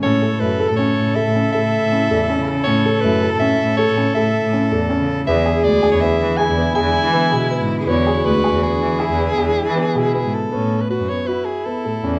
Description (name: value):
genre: contemporary instrumental, chamber music in an uneven meter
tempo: 160 BPM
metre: 7/4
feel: straight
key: A major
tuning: A4 = 440 Hz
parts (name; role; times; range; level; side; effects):
- bright soprano saxophone; melody; 0.0-12.2 s; G#4 to G#5; -24 LUFS; equal; none
- clear viola; second line; 0.0-12.2 s; C#4 to A4; -26 LUFS; equal; none
- rich studio string section; sustained chords; 0.0-10.5 s; C#3 to E4; -32 LUFS; equal; none
- dark grand piano; arpeggios; 0.0-12.2 s; G#3 to A4; -23 LUFS; equal; none
- clear cello; bass; 0.0-12.1 s; D2 to E3; -23 LUFS; equal; none
room: moderate recital hall reverb, RT60 1.4 s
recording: dark, warm production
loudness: -18 LUFS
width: mono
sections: 0.0-10.5 A section; 10.5-12.2 B section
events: none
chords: 0.0 A; 5.3 E7; 10.5 A69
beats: | 0.03 0.41 0.79 1.16 1.54 1.92 2.29 | 2.67 3.04 3.41 3.79 4.16 4.53 4.90 | 5.27 5.64 6.02 6.39 6.76 7.14 7.51 | 7.88 8.26 8.63 9.01 9.38 9.77 10.15 | 10.53 10.91 11.28 11.66 12.03